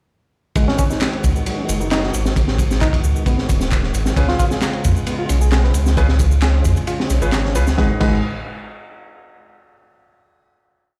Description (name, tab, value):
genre	breakbeat, breaks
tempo	133 BPM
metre	4/4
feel	straight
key	G# dorian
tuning	A4 = 444 Hz
part	percussive tonewheel organ	sustained chords	0.6-8.0 s	C#3 to F#4	-30 LUFS	equal	overdrive, chorus vibrato, slow rotary speaker, sidechain pumping
part	reed electric piano	riff	0.6-8.2 s	F#3 to B4	-27 LUFS	equal	tube saturation, tape echo
part	saturated sub bass	bass	0.6-8.2 s	D#1 to E#2	-20 LUFS	equal	none
part	crunchy breakbeat drum kit	drums	0.6-8.1 s	crash cymbal, kick drum, ride cymbal, snare drum	-22 LUFS	equal	none
part	electronic shaker and handclaps	drums	0.6-7.8 s	none	-31 LUFS	equal	none
part	bright baby grand piano	stabs	4.2-8.2 s	C#4 to B4	-29 LUFS	equal	tape echo
room	studio ambience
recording	played on a big sound system in a bare room, stone room reverb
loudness	-18 LUFS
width	mono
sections	0.6-7.8 drop; 7.8-9.6 final chord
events	drop 0.6-7.8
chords	0.6 G#m7; 4.2 C#7; 7.8 G#m7